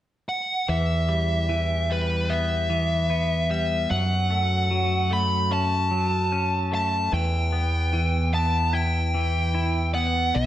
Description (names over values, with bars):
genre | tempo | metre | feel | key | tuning
post-rock | 74 BPM | 4/4 | straight | E dorian | A4 = 440 Hz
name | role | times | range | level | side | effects
fuzz lead guitar | melody | 0.3-10.5 s | B4 to B5 | -25 LUFS | equal | distortion, slapback echo
twangy electric guitar | arpeggios | 0.7-10.5 s | B2 to E4 | -29 LUFS | left 2 dB | phaser, slapback echo
growling fingered electric bass | bass | 0.7-10.5 s | B1 to F#2 | -25 LUFS | equal | overdrive
room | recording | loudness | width
wet recital hall reverb, RT60 1.6 s | big arena sound | -21 LUFS | side -12 dB against mid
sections
0.7-10.5 A section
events
none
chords
0.0 N.C.; 0.7 Em; 3.9 F#m; 7.1 Em